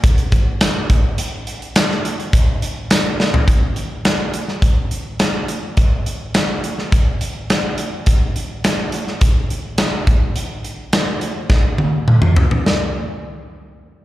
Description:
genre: rock.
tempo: 105 BPM.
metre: 4/4.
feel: straight.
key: none.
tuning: none.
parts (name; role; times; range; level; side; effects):
big rock drum kit; drums; 0.0-12.8 s; hi-hat, kick drum, snare drum, toms; -15 LUFS; equal; none.
tambourine; percussion; 0.6-3.0 s; none; -28 LUFS; left 1 dB; none.
room: light reverb.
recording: live gig heard through the venue's PA, recital hall reverb.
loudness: -15 LUFS.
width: side -15 dB against mid.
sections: 0.0-3.5 A section; 3.5-12.6 B section; 12.6-14.0 C section.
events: drum fill 3.2, 11.5-12.6.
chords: none.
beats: 0.03 0.61 | 1.18 1.76 2.33 2.90 | 3.48 4.05 4.63 5.20 | 5.78 6.35 6.92 7.50 | 8.07 8.64 9.22 9.79 | 10.36 10.93 11.51 12.08 | 12.65.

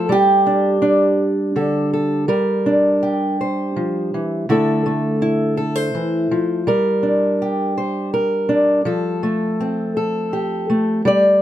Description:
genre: folk, solo fingerstyle acoustic guitar.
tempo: 82 BPM.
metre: 3/4.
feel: straight.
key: G dorian.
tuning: A4 = 439 Hz.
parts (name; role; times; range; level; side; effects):
fingerpicked old ladder-braced acoustic guitar; solo; 0.0-11.4 s; D3 to D5; -16 LUFS; equal; none.
room: little or no reverb.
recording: close, detailed microphones.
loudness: -16 LUFS.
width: side -12 dB against mid.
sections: 0.0-2.3 A section; 2.3-11.1 B section.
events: none.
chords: 0.1 Gsus2; 2.3 Gm; 4.5 Dmadd9; 6.7 Gm; 8.9 Fadd9.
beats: | 0.09 0.82 1.56 | 2.29 3.03 3.76 | 4.49 5.22 5.95 | 6.67 7.40 8.13 | 8.85 9.58 10.32 | 11.05.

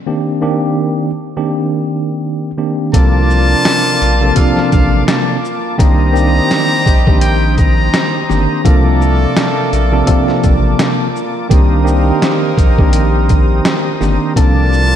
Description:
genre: hip hop, boom-bap hip-hop.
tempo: 84 BPM.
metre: 4/4.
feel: swing 57% on 16ths.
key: C dorian.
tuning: A4 = 440 Hz.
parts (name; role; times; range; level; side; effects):
mellow tine electric piano; accompaniment; 0.1-15.0 s; C3 to A4; -16 LUFS; equal; medium stereo tremolo.
trumpet with metal mute; melody; 2.9-8.6, 14.4-15.0 s; F5 to Bb5; -18 LUFS; left 1 dB; diffuse ambient delay.
tonewheel organ; sustained chords; 2.9-15.0 s; Bb3 to Eb6; -22 LUFS; equal; chorus vibrato, wide subtle chorus.
warm horn section; stabs; 2.9-15.0 s; F3 to Bb4; -22 LUFS; right 1 dB; diffuse ambient delay.
saturated sub bass; bass; 2.9-15.0 s; G1 to C2; -14 LUFS; equal; none.
boom bap sampler-style drum kit; drums; 2.9-14.9 s; hi-hat, kick drum, shaker, snare drum; -14 LUFS; equal; vintage 12-bit sampler grit.
room: moderate lush hall reverb, RT60 1.9 s, digital ambience.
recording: dreamy mix soaked in reverb.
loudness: -10 LUFS.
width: side -10 dB against mid.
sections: 0.0-2.9 A section; 2.9-15.0 B section.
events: break 0.1-2.9.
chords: 0.1 Cm7; 2.9 Bbmaj7; 5.8 Cm7; 8.7 Bbmaj7; 11.5 Cm7; 14.4 Bbmaj7.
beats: | 0.08 0.79 1.51 2.22 | 2.94 3.65 4.37 5.08 | 5.79 6.51 7.22 7.94 | 8.65 9.37 10.08 10.79 | 11.51 12.22 12.94 13.65 | 14.37.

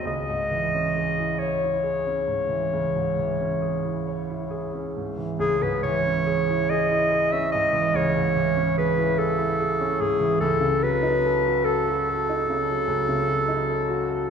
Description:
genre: classical, romantic duo for clarinet and grand piano.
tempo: 45-50 BPM (dotted quarters).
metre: 12/8.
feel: rubato.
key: C# minor.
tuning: A4 = 437 Hz.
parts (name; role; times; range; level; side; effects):
clear clarinet; melody; 0.0-14.3 s; G#4 to E5; -23 LUFS; left 1 dB; none.
clear grand piano; accompaniment; 0.0-14.3 s; C#2 to C#5; -26 LUFS; right 2 dB; none.
room: wet scoring stage reverb, RT60 1.6 s.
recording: recorded in a church or concert hall.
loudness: -21 LUFS.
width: side -6 dB against mid.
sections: 0.0-5.4 A section; 5.4-14.3 A section.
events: none.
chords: 0.1 C#m; 10.4 D#m7b5/C#.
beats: | 0.06 1.39 2.73 4.06 | 5.38 6.67 7.92 9.17 | 10.40 11.64 12.87 14.07.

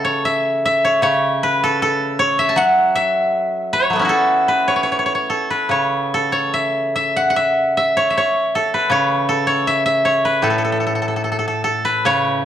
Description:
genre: chinese traditional, Chinese solo plucked strings.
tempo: 72-80 BPM.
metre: 2/4.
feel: rubato.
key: A gong mode.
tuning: A4 = 440 Hz.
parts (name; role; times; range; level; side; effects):
steel-string zither; solo; 0.0-12.4 s; A2 to C#6; -15 LUFS; equal; none.
room: moderate recital hall reverb, RT60 1.6 s.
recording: worn, warbling old tape, cassette tape, warbly pitch drift.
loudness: -15 LUFS.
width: side -10 dB against mid.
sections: 0.0-12.1 A section.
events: none.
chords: none.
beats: 0.22 | 1.03 1.81 | 2.56 3.32 | 4.09 4.88 | 5.70 6.53 | 7.34 8.14 | 8.91 9.68 | 10.45 11.24 | 12.07.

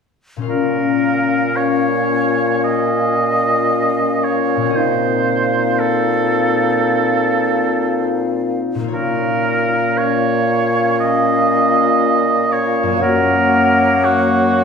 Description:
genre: classical, slow romantic movement for symphony orchestra.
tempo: 57 BPM.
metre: 4/4.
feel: uneven beats, rubato.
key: Bb minor.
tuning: A4 = 440 Hz.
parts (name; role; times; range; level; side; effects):
concert harp; arpeggios; 0.4-14.6 s; Gb2 to F5; -24 LUFS; left 5 dB; none.
clear clarinet; second line; 0.5-14.6 s; Bb3 to Eb4; -23 LUFS; left 6 dB; none.
mellow hollow concert flute; second line; 0.5-14.6 s; F5 to Gb5; -22 LUFS; equal; none.
warm oboe; second line; 0.5-14.6 s; Gb4 to Eb5; -18 LUFS; right 3 dB; none.
warm bassoon; accompaniment; 0.5-14.6 s; Bb2 to Gb3; -20 LUFS; right 2 dB; none.
mellow French horn section; sustained chords; 0.5-14.6 s; Bb3 to Gb4; -23 LUFS; left 5 dB; none.
room: wet concert hall reverb, RT60 1.7 s.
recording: minimal, uncompressed stereo recording.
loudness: -14 LUFS.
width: side -6 dB against mid.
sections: 0.5-14.6 A section.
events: none.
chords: 0.5 Bbm; 4.8 F7/Bb; 8.9 Bbm; 13.0 Gb.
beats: | 0.48 1.56 2.64 3.71 | 4.75 5.80 6.84 7.87 | 8.93 9.97 10.98 12.01 | 13.01 14.03.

